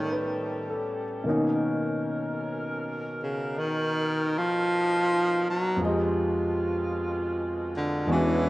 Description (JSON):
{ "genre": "jazz ballad", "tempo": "53 BPM", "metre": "4/4", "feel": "swing 68% on 8ths", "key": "unclear", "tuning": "A4 = 440 Hz", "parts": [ { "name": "clear baritone saxophone", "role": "melody", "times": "0.0-8.5 s", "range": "C#3 to F#3", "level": "-26 LUFS", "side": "equal", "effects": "cassette tape" }, { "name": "clear concert grand piano", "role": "accompaniment", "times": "0.0-8.5 s", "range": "E2 to E5", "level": "-28 LUFS", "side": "equal", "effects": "cassette tape" }, { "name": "mellow saxophone section", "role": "sustained chords", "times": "0.0-8.5 s", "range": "B2 to C#5", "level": "-35 LUFS", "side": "equal", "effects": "cassette tape" } ], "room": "wet spring reverb, RT60 1.8 s, small room ambience", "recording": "home recording on cassette", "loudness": "-25 LUFS", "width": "side -18 dB against mid", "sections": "0.0-8.5 A section", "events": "none", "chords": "0.0 A9; 1.2 Bmaj9; 5.8 Fm7" }